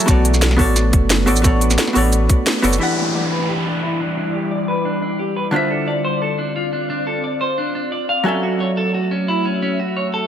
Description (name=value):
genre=liquid drum and bass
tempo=176 BPM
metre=4/4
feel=swing 53% on 16ths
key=unclear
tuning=A4 = 442 Hz
part: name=vintage hollow-body jazz guitar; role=accompaniment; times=0.0-10.3 s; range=D3 to G#5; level=-20 LUFS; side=right 1 dB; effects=digital delay
part: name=glassy FM pad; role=sustained chords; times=0.0-10.3 s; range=G3 to E5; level=-25 LUFS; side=left 2 dB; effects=ensemble chorus, built-in reverb, sidechain pumping
part: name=drum and bass drum kit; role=drums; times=0.0-10.2 s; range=hi-hat, shaker, snare drum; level=-20 LUFS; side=equal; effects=low-pass filter on hats, low-pass filter on perc, low-pass filter on snare
part: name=warm sub bass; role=bass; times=0.1-2.8 s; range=F#1 to B1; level=-17 LUFS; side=equal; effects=none
part: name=electronic kick drum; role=drums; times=0.1-2.4 s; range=none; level=-15 LUFS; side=equal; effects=none
part: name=clean electric guitar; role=arpeggios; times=2.8-10.3 s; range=C#4 to F5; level=-22 LUFS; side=equal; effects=wide subtle chorus, low-pass filter, digital delay
part: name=downlifter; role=sound effects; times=2.8-5.5 s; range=none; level=-26 LUFS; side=left 1 dB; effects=none
room=light reverb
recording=none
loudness=-16 LUFS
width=side -9 dB against mid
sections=0.0-2.8 A section; 2.8-10.3 B section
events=drop 0.0-2.8; kick drops out 2.5-2.8; band accent 2.5; filter sweep on clean electric guitar 2.8-10.3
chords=0.1 Bm7; 2.8 Em7; 5.5 Dm7; 8.3 F#m7